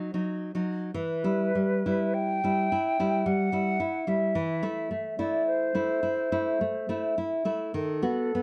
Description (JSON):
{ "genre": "romantic duo for flute and classical guitar", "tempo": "47-55 BPM", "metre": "3/4", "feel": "rubato", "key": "E minor", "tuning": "A4 = 437 Hz", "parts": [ { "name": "nylon-string guitar", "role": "accompaniment", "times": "0.0-8.4 s", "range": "D#3 to B4", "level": "-30 LUFS", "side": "equal", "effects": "none" }, { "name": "hollow concert flute", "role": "melody", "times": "0.9-8.4 s", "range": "A4 to G5", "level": "-32 LUFS", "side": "equal", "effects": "none" } ], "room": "wet studio ambience, RT60 0.5 s", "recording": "dark, warm production", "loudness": "-28 LUFS", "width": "mono", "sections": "0.9-8.4 A section", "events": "none", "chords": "0.0 B; 0.9 Em; 4.4 Am/E; 7.7 B7/D#" }